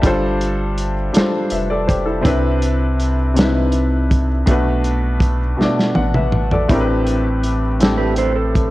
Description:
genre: slow six-eight R&B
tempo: 54 BPM (dotted quarters)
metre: 6/8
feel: straight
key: A minor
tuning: A4 = 440 Hz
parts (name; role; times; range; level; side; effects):
- warm concert grand piano; accompaniment; 0.0-8.7 s; A2 to A5; -18 LUFS; left 1 dB; none
- round analog bass; bass; 0.0-8.7 s; F1 to C2; -20 LUFS; equal; none
- warm soul drum kit; drums; 0.0-8.7 s; hi-hat, kick drum, snare drum, toms; -18 LUFS; equal; none
- mellow electric guitar; second line; 8.0-8.7 s; G4 to C5; -20 LUFS; right 4 dB; wide subtle chorus
room: light reverb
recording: worn, warbling old tape, cassette tape, warbly pitch drift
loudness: -15 LUFS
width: side -17 dB against mid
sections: 0.0-8.7 A section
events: drum fill 5.6-6.7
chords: 0.0 G9sus4; 2.3 Cmaj9; 4.5 Bm7; 6.7 Am11

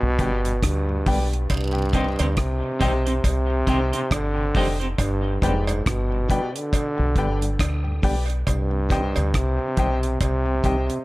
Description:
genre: dub reggae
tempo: 69 BPM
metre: 4/4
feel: swing 60% on 16ths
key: C harmonic minor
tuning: A4 = 440 Hz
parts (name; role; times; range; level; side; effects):
- warm trombone; melody; 0.0-11.0 s; G2 to D3; -26 LUFS; equal; tape echo
- tonewheel organ; accompaniment; 0.0-11.0 s; G2 to C4; -32 LUFS; equal; stopped rotary speaker
- deep dub fingered electric bass; bass; 0.0-10.9 s; F1 to D2; -24 LUFS; equal; none
- clear upright piano; stabs; 0.2-11.0 s; G4 to G5; -31 LUFS; left 2 dB; tape echo
- deep reggae drum kit; drums; 0.2-11.0 s; hi-hat, kick drum, rim click; -24 LUFS; equal; none
- cowbell and jawbone-type rattle; percussion; 1.5-10.5 s; none; -35 LUFS; right 3 dB; tape echo
- clean electric guitar; accompaniment; 1.9-4.9 s; C4 to C5; -30 LUFS; right 2 dB; tape echo
room: studio ambience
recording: none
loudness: -20 LUFS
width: side -20 dB against mid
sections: 0.0-11.0 A section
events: break 0.0-1.5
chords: 0.0 G; 1.5 Cm; 5.0 G; 8.5 Cm

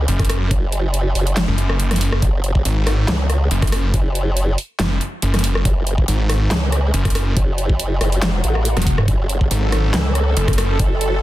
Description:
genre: heavy wobble dubstep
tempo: 140 BPM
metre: 4/4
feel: swing 54% on 16ths, half-time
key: F# minor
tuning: A4 = 440 Hz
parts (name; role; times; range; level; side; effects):
- formant-sweep wobble bass; bass; 0.0-11.2 s; E1 to C#2; -18 LUFS; equal; chorus, overdrive
- snarling distorted saw bass; bass; 0.1-10.8 s; E1 to G#1; -18 LUFS; equal; distortion, overdrive
- dubstep drum kit; drums; 0.1-11.1 s; handclaps, hi-hat, rim click, snare drum, toms; -22 LUFS; equal; overdrive
- electronic kick drum; drums; 0.2-10.9 s; none; -18 LUFS; equal; overdrive
- swell; sound effects; 8.4-9.1 s; none; -31 LUFS; right 2 dB; none
- supersaw pad; sustained chords; 9.1-11.2 s; F#3 to A4; -25 LUFS; equal; phaser, sidechain pumping
room: little or no reverb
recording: dense, heavily limited modern master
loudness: -16 LUFS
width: side -15 dB against mid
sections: 0.0-11.2 A section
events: swell 8.4-9.1; drum fill 8.8-9.1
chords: 0.0 F#m

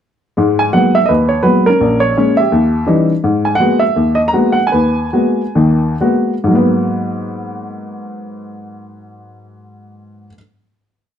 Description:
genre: solo jazz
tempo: 118-169 BPM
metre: 4/4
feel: swing 64% on 8ths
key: G# minor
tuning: A4 = 441 Hz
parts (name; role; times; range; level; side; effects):
- dark baby grand piano; solo; 0.4-10.4 s; A#1 to A#5; -12 LUFS; equal; none
room: moderate studio reverb, RT60 0.9 s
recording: dark, warm production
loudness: -11 LUFS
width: side -9 dB against mid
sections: 0.4-6.5 A section; 6.5-10.6 final chord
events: slowing down 3.2-6.5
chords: 0.4 G#m9; 1.8 A#m7b5; 2.5 D#7b9; 3.2 G#m9

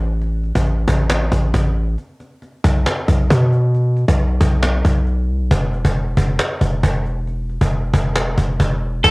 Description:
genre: hip hop, trap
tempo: 136 BPM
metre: 4/4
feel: half-time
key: unclear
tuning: A4 = 440 Hz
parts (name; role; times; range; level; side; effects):
- hard-hitting 808-style bass; bass; 0.0-9.1 s; E1 to B2; -17 LUFS; equal; none
- cajon; drums; 0.0-9.1 s; none; -19 LUFS; equal; none
- electric guitar at the edge of break-up; melody; 9.0-9.1 s; A4; -10 LUFS; equal; wide subtle chorus, low-pass filter
room: little or no reverb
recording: home recording on cassette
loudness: -15 LUFS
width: side -26 dB against mid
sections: 0.0-9.1 A section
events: break 0.0-2.0, 2.0-2.4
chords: none

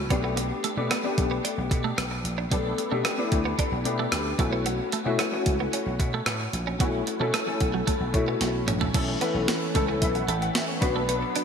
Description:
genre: 1980s-style pop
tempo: 112 BPM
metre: 4/4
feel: straight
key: unclear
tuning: A4 = 440 Hz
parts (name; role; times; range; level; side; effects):
- warm grand piano; accompaniment; 0.0-11.4 s; A3 to G5; -28 LUFS; left 3 dB; ensemble chorus
- vintage slap bass; bass; 0.0-11.2 s; A1 to B2; -30 LUFS; equal; none
- twelve-string electric guitar; riff; 0.1-11.4 s; F#3 to D4; -32 LUFS; right 6 dB; analog chorus, ping-pong delay
- clean 12-bit digital drum machine; drums; 0.1-11.4 s; crash cymbal, hi-hat, kick drum, rim click, snare drum, toms; -28 LUFS; right 1 dB; overdrive
- brassy analog pad; sustained chords; 8.9-11.4 s; E3 to D4; -33 LUFS; right 2 dB; chorus
room: moderate lush hall reverb, RT60 2.2 s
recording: bright 1980s-style digital production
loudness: -23 LUFS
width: side -6 dB against mid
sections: 0.0-8.9 A section; 8.9-11.4 B section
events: drum fill 8.4-8.9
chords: 0.1 Gadd9/B; 4.4 F#m7; 8.9 A/B; 10.8 Bm

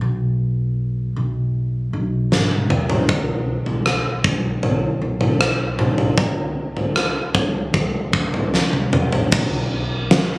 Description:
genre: pop ballad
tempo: 78 BPM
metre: 4/4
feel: straight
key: unclear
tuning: A4 = 440 Hz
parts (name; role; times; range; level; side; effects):
- upright bass; bass; 0.0-10.3 s; G#1 to C#2; -22 LUFS; equal; none
- huge arena drum kit; drums; 2.3-10.3 s; crash cymbal, kick drum, rim click, snare drum, toms; -18 LUFS; equal; none
room: little or no reverb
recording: recorded on a phone in the room, studio reverb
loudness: -17 LUFS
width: side -26 dB against mid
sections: 0.0-9.3 A section; 9.3-10.4 B section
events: drum fill 2.3-3.1, 8.5-9.3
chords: none

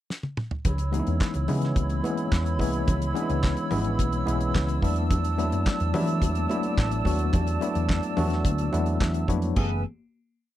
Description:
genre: disco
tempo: 108 BPM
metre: 4/4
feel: straight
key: unclear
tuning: A4 = 440 Hz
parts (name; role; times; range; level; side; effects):
- damped 70s drum kit; drums; 0.1-9.7 s; crash cymbal, handclaps, hi-hat, kick drum, snare drum, toms; -27 LUFS; equal; none
- breathy large flute ensemble; sustained chords; 0.6-9.8 s; B4 to E6; -32 LUFS; right 3 dB; none
- hollow-body short-scale picked electric bass; bass; 0.7-9.8 s; F#1 to E3; -27 LUFS; right 1 dB; none
- congas; percussion; 0.7-9.8 s; none; -35 LUFS; left 4 dB; none
- tine electric piano; accompaniment; 0.9-9.8 s; E3 to F#5; -28 LUFS; left 2 dB; overdrive, fast stereo tremolo
room: little or no reverb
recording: dry, close 1970s-style studio recording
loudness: -23 LUFS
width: side -13 dB against mid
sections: 0.0-0.6 pickup bar; 0.6-9.6 verse; 9.6-10.6 final chord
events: drum fill 0.1-0.6; tine electric piano fill 8.4-9.6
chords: 0.0 N.C.; 0.6 C#m7; 4.8 E7sus4; 9.6 F#m11

